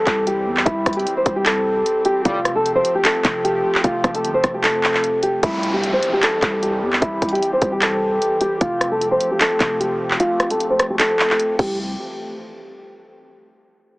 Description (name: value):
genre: hip hop, trap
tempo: 151 BPM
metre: 4/4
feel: half-time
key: C major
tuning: A4 = 440 Hz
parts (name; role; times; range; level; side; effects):
- nylon-string guitar; melody; 0.0-11.8 s; E4 to C5; -19 LUFS; equal; low-pass filter
- warbly tape-like pad; sustained chords; 0.0-11.8 s; E3 to G4; -28 LUFS; equal; chorus, built-in reverb, low-pass filter
- growling 808-style bass; bass; 0.1-12.0 s; F1 to E2; -27 LUFS; equal; none
- trap drum kit; drums; 0.1-11.7 s; crash cymbal, handclaps, hi-hat, kick drum, rim click; -20 LUFS; equal; none
- warm brass ensemble; stabs; 2.3-2.4 s; C2 to G3; -27 LUFS; equal; none
- downlifter; sound effects; 5.4-8.6 s; none; -29 LUFS; equal; none
room: light reverb, digital ambience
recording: heavily compressed radio sound, multiband compression, small speaker sound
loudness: -16 LUFS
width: side -24 dB against mid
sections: 0.0-5.4 A section; 5.4-11.8 B section; 11.8-13.4 C section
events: filter sweep 5.4-11.8; kick muted 10.2-11.8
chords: 0.0 C; 2.3 Fadd9; 5.4 C; 8.6 Fadd9; 11.6 C; 11.8 N.C.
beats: 0.27 | 0.66 1.06 1.46 1.86 | 2.25 2.65 3.05 3.44 | 3.84 4.24 4.64 5.04 | 5.43 5.83 6.23 6.62 | 7.02 7.42 7.82 8.21 | 8.61 9.01 9.40 9.80 | 10.20 10.60 10.99 11.39 | 11.79